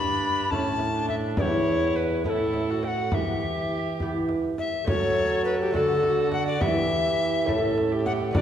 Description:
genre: classical, renaissance-style consort dance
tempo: 69 BPM (dotted quarters)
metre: 6/8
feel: straight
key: E dorian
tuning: A4 = 439 Hz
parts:
  - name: bright alto recorder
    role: melody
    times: 0.0-8.4 s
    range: G4 to B5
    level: -26 LUFS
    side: left 3 dB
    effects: none
  - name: warm viola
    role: second line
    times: 0.0-8.4 s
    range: C#4 to A4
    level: -30 LUFS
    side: right 4 dB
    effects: none
  - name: lute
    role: accompaniment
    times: 0.0-8.4 s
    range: E2 to D5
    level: -30 LUFS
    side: right 1 dB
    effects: none
  - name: warm trombone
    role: bass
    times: 0.0-8.4 s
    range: E2 to F#3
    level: -30 LUFS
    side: right 2 dB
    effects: none
  - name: frame drum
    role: percussion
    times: 0.5-8.4 s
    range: none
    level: -32 LUFS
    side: equal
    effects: none
room: wet concert hall reverb, RT60 1.9 s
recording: recorded in a church or concert hall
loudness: -22 LUFS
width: side -9 dB against mid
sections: 0.0-4.9 A section; 4.9-8.4 A section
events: none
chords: 0.0 G; 0.5 A; 1.4 Em; 2.2 A; 3.1 Em; 4.9 F#m; 5.7 D; 6.6 Em; 7.5 A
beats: 0.51 | 1.38 2.25 | 3.12 4.00 | 4.88 5.75 | 6.62 7.48 | 8.35

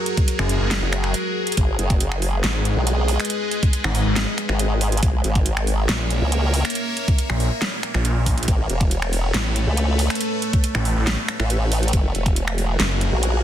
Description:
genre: heavy wobble dubstep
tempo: 139 BPM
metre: 4/4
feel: half-time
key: G# minor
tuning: A4 = 441 Hz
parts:
  - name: evolving wavetable pad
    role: sustained chords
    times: 0.0-13.4 s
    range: F#3 to E5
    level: -26 LUFS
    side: equal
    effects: phaser, built-in reverb, sidechain pumping
  - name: dubstep drum kit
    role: drums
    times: 0.1-13.3 s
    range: finger snaps, hi-hat, snare drum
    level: -26 LUFS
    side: right 1 dB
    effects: studio reverb, soft clipping on snare
  - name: electronic kick drum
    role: drums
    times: 0.2-12.3 s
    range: none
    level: -19 LUFS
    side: equal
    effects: studio reverb
  - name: snarling distorted saw bass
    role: bass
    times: 0.4-13.1 s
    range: F#1 to A#1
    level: -21 LUFS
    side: equal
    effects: distortion, overdrive
  - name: formant-sweep wobble bass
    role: bass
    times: 0.8-13.4 s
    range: E1 to C#2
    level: -20 LUFS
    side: equal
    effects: chorus, overdrive
room: digital ambience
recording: dense, heavily limited modern master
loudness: -18 LUFS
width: side -11 dB against mid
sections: 0.0-13.4 A section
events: break 1.1-1.6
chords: 0.0 F#add9; 1.6 G#m; 5.0 A#dim; 8.5 Aadd9; 11.9 F#add9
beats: 0.28 0.71 1.14 | 1.57 2.00 2.44 2.87 | 3.30 3.73 4.16 4.59 | 5.03 5.46 5.89 6.32 | 6.75 7.18 7.62 8.05 | 8.48 8.91 9.34 9.77 | 10.21 10.64 11.07 11.50 | 11.93 12.36 12.80 13.23

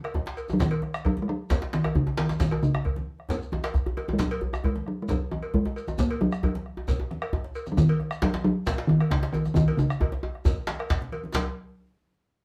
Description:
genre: west african traditional, West African drum ensemble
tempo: 134 BPM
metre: 4/4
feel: straight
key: F# major pentatonic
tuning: A4 = 438 Hz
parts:
  - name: talking drum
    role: melody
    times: 0.0-11.6 s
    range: C#3 to A#3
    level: -28 LUFS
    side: equal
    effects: none
  - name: bombo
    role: percussion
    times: 0.0-11.6 s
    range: none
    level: -32 LUFS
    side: equal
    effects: none
  - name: congas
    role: percussion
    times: 0.0-11.5 s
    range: none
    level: -39 LUFS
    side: equal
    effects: none
  - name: cowbell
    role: percussion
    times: 0.0-11.6 s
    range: none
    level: -39 LUFS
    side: equal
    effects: none
  - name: djembe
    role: percussion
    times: 0.1-11.6 s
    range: none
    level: -38 LUFS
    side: equal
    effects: none
  - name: djembe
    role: percussion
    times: 0.1-11.6 s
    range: none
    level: -35 LUFS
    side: equal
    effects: none
  - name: shekere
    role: percussion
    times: 0.4-11.5 s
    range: none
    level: -40 LUFS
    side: equal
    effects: none
room: wet studio reverb, RT60 0.5 s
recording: heard from further back in the room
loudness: -27 LUFS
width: mono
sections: 0.0-11.3 A section; 11.3-12.4 B section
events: drum fill 9.6-11.3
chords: none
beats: 0.15 | 0.60 1.05 1.50 1.95 | 2.40 2.85 3.30 3.75 | 4.19 4.64 5.09 5.54 | 5.99 6.43 6.88 7.33 | 7.78 8.22 8.67 9.12 | 9.56 10.01 10.45 10.90 | 11.35

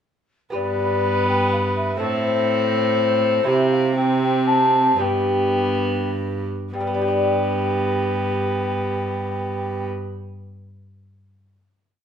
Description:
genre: classical, renaissance-style consort dance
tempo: 97-124 BPM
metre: 3/4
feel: straight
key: G major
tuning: A4 = 440 Hz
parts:
  - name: mellow hollow baroque flute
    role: melody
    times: 0.5-9.8 s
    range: C5 to A5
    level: -23 LUFS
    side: left 3 dB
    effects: none
  - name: warm viola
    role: second line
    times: 0.5-9.9 s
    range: G4 to B4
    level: -26 LUFS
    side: right 6 dB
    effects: none
  - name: lute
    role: accompaniment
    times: 0.5-10.2 s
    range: G2 to D5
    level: -26 LUFS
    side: left 1 dB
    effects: none
  - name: rich cello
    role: bass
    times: 0.5-9.9 s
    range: G2 to C3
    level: -25 LUFS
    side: right 1 dB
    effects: none
  - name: warm viola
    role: accompaniment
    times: 0.6-9.9 s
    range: B3 to C4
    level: -26 LUFS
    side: left 2 dB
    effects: none
room: moderate stone room reverb, RT60 1.0 s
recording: heard from further back in the room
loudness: -18 LUFS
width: side -8 dB against mid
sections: 0.5-6.7 A section; 6.7-10.4 final chord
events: slowing down 2.7-6.7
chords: 0.5 G; 2.0 Am; 3.5 C; 5.0 G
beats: | 0.55 1.03 1.52 | 2.01 2.50 2.98 | 3.47 3.96 4.47 | 5.00 5.55 6.13 | 6.74 7.35 7.97 | 8.59 9.21 9.82

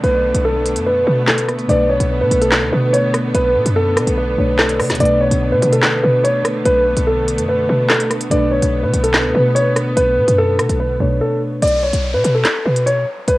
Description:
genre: hip hop, drill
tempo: 145 BPM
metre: 4/4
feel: half-time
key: B minor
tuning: A4 = 444 Hz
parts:
  - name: dark concert grand piano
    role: melody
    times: 0.0-13.4 s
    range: A4 to D5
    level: -17 LUFS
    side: equal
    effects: cassette tape
  - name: muted felt-like synth keys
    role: accompaniment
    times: 0.0-11.6 s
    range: B2 to C#5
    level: -22 LUFS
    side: equal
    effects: chorus, cassette tape
  - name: bright symphonic string section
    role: sustained chords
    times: 0.0-11.6 s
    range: D3 to B3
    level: -22 LUFS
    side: right 1 dB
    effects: cassette tape
  - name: short 808-style bass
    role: bass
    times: 0.0-13.4 s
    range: B1 to D3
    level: -19 LUFS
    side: equal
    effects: none
  - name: drill drum kit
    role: drums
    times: 0.0-13.4 s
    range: handclaps, hi-hat, rim click, snare drum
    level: -18 LUFS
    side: equal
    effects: none
  - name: downlifter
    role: sound effects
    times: 0.0-1.7, 11.6-13.4 s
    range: none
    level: -31 LUFS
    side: equal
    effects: none
room: light reverb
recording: home recording on cassette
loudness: -13 LUFS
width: side -18 dB against mid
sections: 0.0-11.6 A section; 11.6-13.4 B section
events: break 11.2-11.6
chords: 0.0 Bm7; 11.6 B5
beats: | 0.04 0.45 0.86 1.28 | 1.69 2.10 2.52 2.93 | 3.35 3.76 4.17 4.59 | 5.00 5.42 5.83 6.24 | 6.66 7.07 7.48 7.90 | 8.31 8.73 9.14 9.55 | 9.97 10.38 10.79 11.21 | 11.62 12.04 12.45 12.86 | 13.28

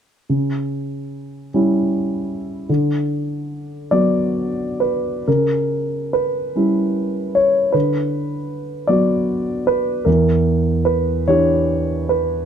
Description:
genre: neoclassical minimalist piano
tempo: 42-52 BPM (dotted quarters)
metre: 6/8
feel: rubato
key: unclear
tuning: A4 = 439 Hz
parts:
  - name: dark concert grand piano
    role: solo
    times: 0.3-12.5 s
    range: E2 to D5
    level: -17 LUFS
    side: equal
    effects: none
room: moderate small room reverb, RT60 0.5 s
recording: dark, warm production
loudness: -16 LUFS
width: side -8 dB against mid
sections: 0.3-5.3 A section; 5.3-12.5 B section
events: none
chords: 0.3 C#dim; 2.7 Bm/D; 5.3 C#dim; 7.7 Bm/D; 10.1 Em7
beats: | 0.28 1.51 | 2.69 3.92 | 5.27 6.54 | 7.74 8.89 | 10.07 11.27

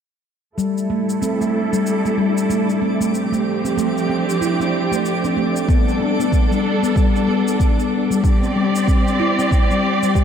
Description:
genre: organic downtempo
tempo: 94 BPM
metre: 4/4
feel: swing 60% on 16ths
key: A minor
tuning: A4 = 440 Hz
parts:
  - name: warm symphonic string section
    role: sustained chords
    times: 0.6-10.2 s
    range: F3 to D5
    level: -22 LUFS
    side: right 2 dB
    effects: sidechain pumping, low-pass filter
  - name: handpan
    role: arpeggios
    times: 0.6-10.2 s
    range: G3 to G4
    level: -19 LUFS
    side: left 1 dB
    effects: low-pass filter, analog delay
  - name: cabasa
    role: drums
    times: 0.6-10.2 s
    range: none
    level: -36 LUFS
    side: left 1 dB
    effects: none
  - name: twinkling granular texture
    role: texture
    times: 1.4-10.2 s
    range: D4 to D5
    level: -29 LUFS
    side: equal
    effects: built-in reverb, wide subtle chorus
  - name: electronic kick drum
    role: drums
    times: 5.7-10.2 s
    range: none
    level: -16 LUFS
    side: equal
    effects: none
room: wet cathedral reverb, RT60 5.1 s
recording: dreamy mix soaked in reverb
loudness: -16 LUFS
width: side -8 dB against mid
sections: 0.6-10.2 A section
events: filter sweep on string section 0.6-10.2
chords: 0.6 Am7; 3.1 F; 5.7 G; 8.2 C5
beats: | 0.58 1.22 1.85 2.49 | 3.13 3.77 4.41 5.04 | 5.68 6.32 6.96 7.60 | 8.24 8.88 9.51 10.15

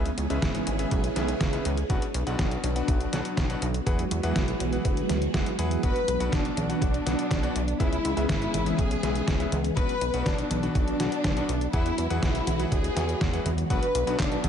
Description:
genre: italo disco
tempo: 122 BPM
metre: 4/4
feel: straight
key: B dorian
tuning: A4 = 440 Hz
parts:
  - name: phased string machine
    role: sustained chords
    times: 0.0-14.5 s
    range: E3 to G#4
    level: -31 LUFS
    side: right 1 dB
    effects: ensemble chorus, phaser
  - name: bright electric grand piano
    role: stabs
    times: 0.0-14.5 s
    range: B2 to F#5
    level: -34 LUFS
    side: left 3 dB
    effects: digital delay
  - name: chorused synth bass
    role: bass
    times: 0.0-14.5 s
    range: G#1 to E2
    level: -30 LUFS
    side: equal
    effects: none
  - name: detuned 8-bit digital drum machine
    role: drums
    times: 0.1-14.5 s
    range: congas, handclaps, hi-hat, snare drum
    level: -31 LUFS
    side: equal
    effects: gated reverb
  - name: electronic kick drum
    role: drums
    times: 0.4-14.3 s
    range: none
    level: -28 LUFS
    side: equal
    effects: none
  - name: dark studio violin section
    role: melody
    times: 5.8-14.5 s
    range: D4 to B4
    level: -30 LUFS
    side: left 2 dB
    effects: digital delay
room: light reverb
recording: nothing above 11.0 kHz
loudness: -24 LUFS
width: side -8 dB against mid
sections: 0.0-14.5 A section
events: none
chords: 0.0 C#m7; 1.9 Bm; 3.9 Eadd9; 5.8 Bm; 7.8 C#m7; 9.8 Bm; 11.7 Eadd9; 13.7 Bm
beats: 0.42 0.92 1.41 | 1.90 2.39 2.88 3.37 | 3.87 4.36 4.85 5.34 | 5.83 6.33 6.82 7.31 | 7.80 8.29 8.78 9.28 | 9.77 10.26 10.75 11.24 | 11.73 12.23 12.72 13.21 | 13.70 14.19

